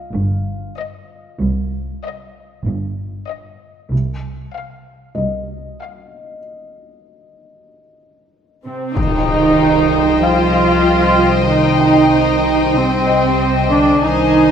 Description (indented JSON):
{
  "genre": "cinematic, suspense film score",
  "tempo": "95 BPM",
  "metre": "4/4",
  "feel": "straight",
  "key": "C minor",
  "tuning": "A4 = 439 Hz",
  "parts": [
    { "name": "felt-muted upright piano", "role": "texture", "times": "0.0-14.5 s", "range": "F4 to G5", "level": "-28 LUFS", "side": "left 5 dB", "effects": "none" },
    { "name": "dark studio cello section", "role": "bass", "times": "0.1-14.5 s", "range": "C2 to F3", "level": "-21 LUFS", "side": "right 3 dB", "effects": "none" },
    { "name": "warm studio double bass section", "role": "bass", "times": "0.1-14.5 s", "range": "G1 to C2", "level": "-21 LUFS", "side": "right 2 dB", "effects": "none" },
    { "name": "warm studio violin section", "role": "melody", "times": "0.8-14.5 s", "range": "Eb5 to Ab5", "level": "-23 LUFS", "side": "left 6 dB", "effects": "none" },
    { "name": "dark studio viola section", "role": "accompaniment", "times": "8.7-14.5 s", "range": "C4 to F4", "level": "-14 LUFS", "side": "right 2 dB", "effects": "none" },
    { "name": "clear studio violin section", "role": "second line", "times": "9.0-14.5 s", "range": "C5 to Eb5", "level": "-20 LUFS", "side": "left 5 dB", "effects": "none" },
    { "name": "impact", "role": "sound effects", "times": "9.0-11.5 s", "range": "none", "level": "-25 LUFS", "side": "left 2 dB", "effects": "none" }
  ],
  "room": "moderate scoring stage reverb, RT60 2.1 s",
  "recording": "minimal, uncompressed stereo recording",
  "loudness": "-13 LUFS",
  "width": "side -7 dB against mid",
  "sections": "0.0-9.0 A section; 9.0-14.5 B section",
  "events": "break 6.4-9.0; impact 9.0-11.5",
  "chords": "0.0 Cm; 3.9 N.C.; 9.0 Cm",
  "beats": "0.13 0.76 | 1.39 2.02 2.65 3.29 | 3.92 4.55 5.18 5.81 | 6.44 7.08 7.71 8.34 | 8.97 9.60 10.23 10.87 | 11.50 12.13 12.76 13.39 | 14.02"
}